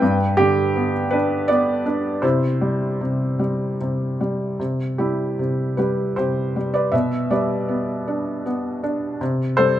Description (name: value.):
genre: classical, lyrical solo piano.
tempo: 74-82 BPM.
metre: 3/4.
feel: rubato.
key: C major.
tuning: A4 = 440 Hz.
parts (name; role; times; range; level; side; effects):
felt-muted upright piano; solo; 0.0-9.8 s; G2 to G5; -19 LUFS; equal; none.
room: light reverb.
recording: close, detailed microphones.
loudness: -19 LUFS.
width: side -12 dB against mid.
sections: 0.0-4.6 A section; 4.6-9.8 A section.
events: none.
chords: 0.0 G; 2.2 C; 6.9 G/B; 9.2 C5.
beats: | 0.02 0.76 1.49 | 2.23 3.00 3.79 | 4.59 5.38 6.17 | 6.93 7.69 8.45 | 9.20.